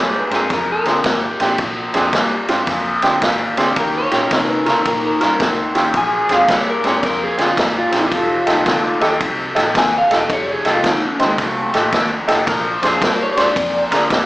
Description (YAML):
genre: electric blues shuffle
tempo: 110 BPM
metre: 4/4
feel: swing 65% on 8ths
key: Bb mixolydian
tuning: A4 = 439 Hz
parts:
  - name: electric guitar through a small old amp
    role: melody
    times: 0.0-14.3 s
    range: Ab3 to Ab5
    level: -19 LUFS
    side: left 1 dB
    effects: slapback echo
  - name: overdriven electric guitar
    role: riff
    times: 0.0-14.3 s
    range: F2 to C4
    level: -22 LUFS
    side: left 2 dB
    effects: phaser, slapback echo
  - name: warm horn section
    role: stabs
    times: 0.0-0.4, 3.8-9.1, 12.5-13.5 s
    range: Bb3 to C5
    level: -25 LUFS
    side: equal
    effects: slapback echo, analog delay
  - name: vintage muted fingered electric bass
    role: bass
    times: 0.0-14.3 s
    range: F1 to Db3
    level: -32 LUFS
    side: equal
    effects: none
  - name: clear upright piano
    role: accompaniment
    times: 0.3-14.0 s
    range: C4 to F5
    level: -19 LUFS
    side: right 1 dB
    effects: slapback echo
  - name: vintage drum kit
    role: drums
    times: 0.3-14.3 s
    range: kick drum, ride cymbal, snare drum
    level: -18 LUFS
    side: equal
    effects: none
room: moderate club reverb, RT60 0.6 s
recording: live gig heard through the venue's PA, club reverb, small speaker sound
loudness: -14 LUFS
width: side -18 dB against mid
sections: 0.0-14.3 A section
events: clean electric guitar solo 0.0-14.3; upright piano fill 3.0-3.8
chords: 0.0 Bb7; 3.8 Eb7; 5.9 Bb7; 8.1 F7; 12.5 Bb7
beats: 0.51 1.05 | 1.60 2.14 2.68 3.23 | 3.77 4.32 4.86 5.40 | 5.95 6.49 7.04 7.58 | 8.12 8.67 9.21 9.75 | 10.30 10.84 11.39 11.93 | 12.47 13.02 13.56 14.11